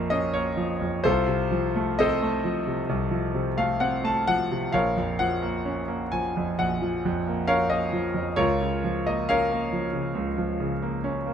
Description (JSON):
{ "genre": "classical, romantic character piece for solo piano", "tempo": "63-71 BPM", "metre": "4/4", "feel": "rubato", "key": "Bb minor", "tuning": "A4 = 439 Hz", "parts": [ { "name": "clear concert grand piano", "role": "solo", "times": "0.0-11.3 s", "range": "Bb1 to A5", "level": "-23 LUFS", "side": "equal", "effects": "none" } ], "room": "light reverb", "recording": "close, detailed microphones", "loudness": "-23 LUFS", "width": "side -8 dB against mid", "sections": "0.0-11.3 A section", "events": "none", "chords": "0.0 Bbm; 1.0 F7/C; 4.7 Bbm; 8.4 Bbm/Db" }